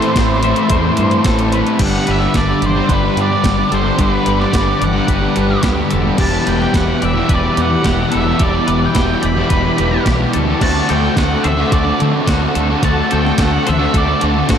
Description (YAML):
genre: rock, shoegaze and dream pop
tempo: 109 BPM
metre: 4/4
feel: straight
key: G major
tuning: A4 = 439 Hz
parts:
  - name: octave-fuzz lead guitar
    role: melody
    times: 0.0-14.2 s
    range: B4 to B5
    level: -21 LUFS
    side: right 1 dB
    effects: distortion, tape echo
  - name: sweeping resonant pad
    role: sustained chords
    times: 0.0-14.6 s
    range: G4 to D6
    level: -25 LUFS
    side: right 1 dB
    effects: chorus
  - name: twelve-string electric guitar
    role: arpeggios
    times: 0.0-14.6 s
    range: F#4 to E5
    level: -25 LUFS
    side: left 4 dB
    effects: analog chorus, tape echo
  - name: crunchy overdriven guitar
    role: riff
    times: 0.0-14.6 s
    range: E2 to G4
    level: -19 LUFS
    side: right 7 dB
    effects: reverse reverb
  - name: thick fuzz guitar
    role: riff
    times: 0.0-14.6 s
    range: E2 to D4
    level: -18 LUFS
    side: left 8 dB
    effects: distortion, analog chorus
  - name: crisp 8-bit digital drum machine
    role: drums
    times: 0.0-14.6 s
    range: crash cymbal, hi-hat, kick drum, snare drum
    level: -19 LUFS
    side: equal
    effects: overdrive
  - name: growling fingered electric bass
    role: bass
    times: 0.2-14.6 s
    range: E1 to D3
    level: -19 LUFS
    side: equal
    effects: overdrive
room: wet lush hall reverb, RT60 2.2 s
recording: dreamy mix soaked in reverb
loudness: -12 LUFS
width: side -8 dB against mid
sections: 0.0-1.8 A section; 1.8-14.6 B section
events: none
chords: 0.0 Am; 1.8 Gmaj7; 6.2 Em7; 10.6 D7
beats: 0.16 0.71 1.26 | 1.81 2.35 2.90 3.45 | 4.00 4.55 5.10 5.65 | 6.20 6.75 7.30 7.85 | 8.40 8.95 9.51 10.06 | 10.62 11.17 11.72 12.28 | 12.84 13.39 13.95 14.51